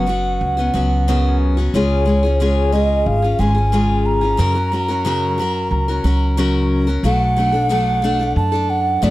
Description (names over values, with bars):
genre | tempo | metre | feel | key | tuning
acoustic folk duo or small band | 90 BPM | 4/4 | straight | unclear | A4 = 438 Hz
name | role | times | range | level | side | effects
alto ocarina | melody | 0.0-9.1 s | C#5 to A#5 | -20 LUFS | right 2 dB | slapback echo
picked steel-string acoustic guitar | accompaniment | 0.0-9.1 s | F#2 to A#4 | -19 LUFS | left 2 dB | none
upright bass | bass | 0.0-9.1 s | F#1 to F#2 | -18 LUFS | equal | none
room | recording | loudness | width
little or no reverb | dry, close 1970s-style studio recording | -15 LUFS | side -16 dB against mid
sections
0.0-7.0 A section; 7.0-9.1 B section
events
ocarina solo 7.0-9.1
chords
0.0 F#sus4; 1.7 C#; 4.4 F#; 7.0 Bm7